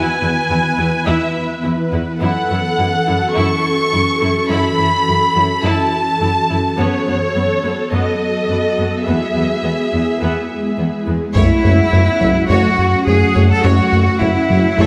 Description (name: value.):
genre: cinematic, hybrid orchestral and electronic film score.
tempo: 105 BPM.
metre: 4/4.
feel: straight.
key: F# minor.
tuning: A4 = 440 Hz.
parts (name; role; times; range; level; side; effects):
rich symphonic violin section; melody; 0.0-14.9 s; C#5 to C#6; -22 LUFS; equal; none.
rich symphonic viola section; accompaniment; 0.0-14.9 s; A3 to B4; -24 LUFS; equal; none.
ethereal airy pad; sustained chords; 0.0-14.9 s; E3 to B4; -23 LUFS; equal; ensemble chorus, built-in reverb.
clear studio cello section; bass; 0.2-14.9 s; E2 to A4; -21 LUFS; equal; none.
rich symphonic violin section; second line; 11.3-14.9 s; C#5; -30 LUFS; equal; none.
rich studio double bass section; bass; 11.3-14.9 s; F#2; -24 LUFS; equal; none.
round analog bass; riff; 11.4-14.9 s; F#2 to F#3; -18 LUFS; equal; none.
clear tuba; bass; 11.4-14.9 s; F#1; -25 LUFS; equal; none.
taiko ensemble; drums; 11.4-12.5 s; none; -25 LUFS; equal; none.
room: wet scoring stage reverb, RT60 1.8 s.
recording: none.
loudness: -16 LUFS.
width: mono.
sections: 0.0-11.4 A section; 11.4-14.9 A section.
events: none.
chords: 0.0 E; 2.2 F#m7; 6.8 B7/F#; 9.1 E; 11.4 F#m7.